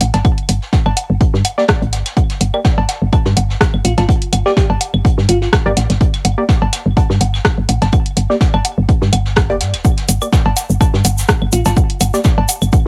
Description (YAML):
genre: minimal techno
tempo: 125 BPM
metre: 4/4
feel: swing 55% on 16ths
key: G minor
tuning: A4 = 442 Hz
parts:
  - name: woody FM bass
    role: bass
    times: 0.0-12.7 s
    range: D1 to G2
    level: -17 LUFS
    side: equal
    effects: sidechain pumping
  - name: jazz brush drum kit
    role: drums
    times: 0.0-12.8 s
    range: hi-hat, snare drum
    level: -32 LUFS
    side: equal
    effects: sidechain pumping on hats, high-pass filter on hats, cassette tape, high-pass filter on snare, high-pass filter on room
  - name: punchy analog drum machine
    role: drums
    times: 0.0-12.6 s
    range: hi-hat, rim click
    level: -20 LUFS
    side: equal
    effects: cassette tape
  - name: woodblock, cowbell and claves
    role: percussion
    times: 0.0-12.8 s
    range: none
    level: -26 LUFS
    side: equal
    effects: cassette tape, analog delay
  - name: electronic kick drum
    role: drums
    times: 0.2-12.8 s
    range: none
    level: -16 LUFS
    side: equal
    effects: cassette tape
  - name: filtered dub chord stab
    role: stabs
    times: 1.6-12.2 s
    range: Bb3 to D5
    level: -21 LUFS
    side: equal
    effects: chorus, analog delay
  - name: bell-like FM electric piano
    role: melody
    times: 3.8-5.5, 11.5-11.7 s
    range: F4 to G4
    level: -22 LUFS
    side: equal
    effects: chorus, cassette tape, analog delay
  - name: tube shaker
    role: percussion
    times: 9.8-12.8 s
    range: none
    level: -25 LUFS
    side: equal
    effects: none
room: little or no reverb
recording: home recording on cassette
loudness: -14 LUFS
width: mono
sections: 0.0-12.9 A section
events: none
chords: none